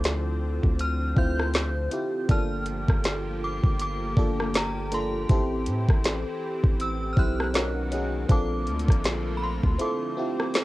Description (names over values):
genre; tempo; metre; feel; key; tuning
contemporary R&B; 80 BPM; 4/4; swing 58% on 16ths; D minor; A4 = 435 Hz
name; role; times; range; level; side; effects
synth chime; melody; 0.0-10.6 s; Bb5 to G6; -34 LUFS; equal; ensemble chorus, plate reverb
FM electric piano; accompaniment; 0.0-10.6 s; Bb3 to C5; -30 LUFS; equal; chorus, phaser, cassette tape
lush unison pad; sustained chords; 0.0-10.6 s; D3 to G4; -36 LUFS; equal; chorus, cassette tape
long sustained 808-style bass; bass; 0.0-9.8 s; G1 to A2; -30 LUFS; equal; none
smooth R&B drum kit; drums; 0.0-10.6 s; hi-hat, kick drum, rim click, snare drum; -23 LUFS; equal; cassette tape
room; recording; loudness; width
light reverb; home recording on cassette; -23 LUFS; side -18 dB against mid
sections
0.0-10.6 A section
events
kick muted 9.8-10.6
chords
0.0 Dm7; 2.3 Gm9; 5.3 Am7; 7.5 Bmaj7; 8.3 Bbmaj7; 9.8 Dm7